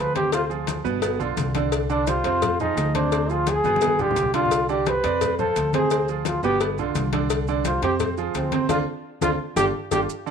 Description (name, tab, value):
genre	latin, salsa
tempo	172 BPM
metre	4/4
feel	straight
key	unclear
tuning	A4 = 441 Hz
part	clear trombone	melody	0.0-10.0 s	C4 to B4	-23 LUFS	equal	none
part	bright baby grand piano	accompaniment	0.0-10.3 s	B2 to D5	-26 LUFS	right 10 dB	none
part	upright bass	bass	0.0-10.0 s	G1 to F2	-28 LUFS	left 1 dB	none
part	congas	percussion	0.2-10.3 s	none	-31 LUFS	left 10 dB	none
part	cowbell	percussion	0.2-10.0 s	none	-29 LUFS	left 11 dB	none
part	maracas	percussion	0.2-10.3 s	none	-39 LUFS	right 14 dB	none
room	moderate echo chamber reverb, RT60 1.3 s, small room ambience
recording	1960s-style stereo with parts hard left and right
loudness	-20 LUFS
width	side -7 dB against mid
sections	0.0-10.1 A section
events	trombone solo 0.0-10.1; drum fill 3.6-4.5, 9.0-10.1; band accent 8.7-10.1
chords	0.3 Dm7b5; 1.0 G7; 1.7 Csus2; 2.4 Fm; 3.1 Dm7b5; 3.8 G7; 4.5 Csus2; 5.2 F5; 5.9 Dm7b5; 6.6 G7; 7.3 Csus2; 8.0 Fm; 8.7 Dm7; 9.4 G5